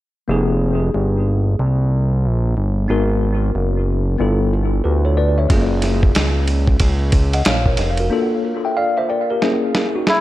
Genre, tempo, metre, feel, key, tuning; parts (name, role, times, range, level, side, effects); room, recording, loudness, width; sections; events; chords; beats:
hip hop, jazz-hop; 92 BPM; 4/4; swing 63% on 16ths; A4 = 440 Hz
mellow tine electric piano; accompaniment; 0.3-10.2 s; Ab3 to G5; -20 LUFS; left 1 dB; medium stereo tremolo, dub echo
fat analog bass; bass; 0.3-8.1 s; F1 to D2; -17 LUFS; equal
dusty soul sampler-style drum kit; drums; 5.5-10.2 s; hi-hat, kick drum, ride cymbal, snare drum; -18 LUFS; equal
trumpet with plunger mute; melody; 10.1-10.2 s; Fb4; -14 LUFS; left 1 dB
light reverb, digital ambience; echo-heavy mix; -15 LUFS; side -15 dB against mid
0.3-10.2 A section
break 8.1-10.2; drum fill 9.4-10.2
0.3 Fm11; 2.9 Abm7; 4.2 G13; 5.5 Gbmaj7; 8.1 Bbmaj7#11; 9.4 Bbm7b5
| 0.28 0.94 1.59 2.24 | 2.89 3.54 4.20 4.85 | 5.50 6.15 6.80 7.46 | 8.11 8.76 9.41 10.06